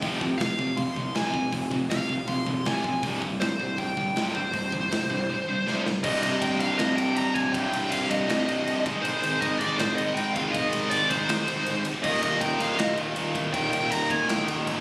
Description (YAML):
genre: heavy metal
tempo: 160 BPM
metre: 4/4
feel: straight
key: C minor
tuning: A4 = 436 Hz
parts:
  - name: scooped high-gain guitar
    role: riff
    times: 0.0-14.8 s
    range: C2 to Ab3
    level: -35 LUFS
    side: equal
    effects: distortion
  - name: tight distorted guitar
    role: riff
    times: 0.0-14.8 s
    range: C2 to Ab3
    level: -34 LUFS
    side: equal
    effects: distortion
  - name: fuzz picked electric bass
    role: bass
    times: 0.0-14.8 s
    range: C1 to C2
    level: -36 LUFS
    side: equal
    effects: overdrive
  - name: big rock drum kit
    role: drums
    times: 0.0-14.8 s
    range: crash cymbal, hi-hat, kick drum, ride cymbal, snare drum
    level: -35 LUFS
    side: equal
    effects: none
  - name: high-gain lead guitar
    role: melody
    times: 0.4-14.5 s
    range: C5 to C6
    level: -30 LUFS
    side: equal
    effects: distortion
  - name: overdriven electric guitar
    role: riff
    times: 6.0-14.8 s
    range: C2 to Ab3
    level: -34 LUFS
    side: equal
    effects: none
room: little or no reverb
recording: recorded on a phone in the room, studio reverb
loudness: -26 LUFS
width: mono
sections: 0.0-6.0 A section; 6.0-14.8 B section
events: drum fill 5.7-6.0; half time 6.0-14.8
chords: 0.0 Fm; 3.0 C5; 6.0 Cm; 8.9 Ab; 12.0 Eb5